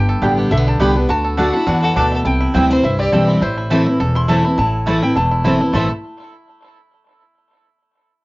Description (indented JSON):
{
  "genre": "bluegrass",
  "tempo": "207 BPM",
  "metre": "4/4",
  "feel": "swing 54% on 8ths",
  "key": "A dorian",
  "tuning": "A4 = 441 Hz",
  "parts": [
    { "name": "bluegrass banjo", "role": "melody", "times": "0.0-5.9 s", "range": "A3 to A4", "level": "-26 LUFS", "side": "right 2 dB", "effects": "cassette tape, tape echo" },
    { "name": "lap resonator guitar", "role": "melody", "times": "0.0-5.9 s", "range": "C5 to C6", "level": "-22 LUFS", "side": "left 1 dB", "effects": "cassette tape" },
    { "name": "picked steel-string acoustic guitar", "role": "accompaniment", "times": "0.0-5.9 s", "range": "E2 to G4", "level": "-16 LUFS", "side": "equal", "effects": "none" },
    { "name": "upright bass", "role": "bass", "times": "0.0-5.9 s", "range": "E1 to E2", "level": "-20 LUFS", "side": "equal", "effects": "none" },
    { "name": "mandolin", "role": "stabs", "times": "0.2-5.9 s", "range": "A3 to A5", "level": "-22 LUFS", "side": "right 2 dB", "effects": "none" },
    { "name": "clear fiddle", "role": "second line", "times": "1.5-3.3, 5.7-5.9 s", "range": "E4 to C5", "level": "-23 LUFS", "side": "left 1 dB", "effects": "none" }
  ],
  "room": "moderate studio ambience, RT60 0.5 s",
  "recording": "home recording on cassette, nothing above 7.5 kHz",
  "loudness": "-13 LUFS",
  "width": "side -22 dB against mid",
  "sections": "0.0-4.6 A section; 4.6-5.7 B section; 5.7-6.9 C section",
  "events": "none",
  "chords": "0.0 G; 1.1 D; 2.3 C; 3.4 Am"
}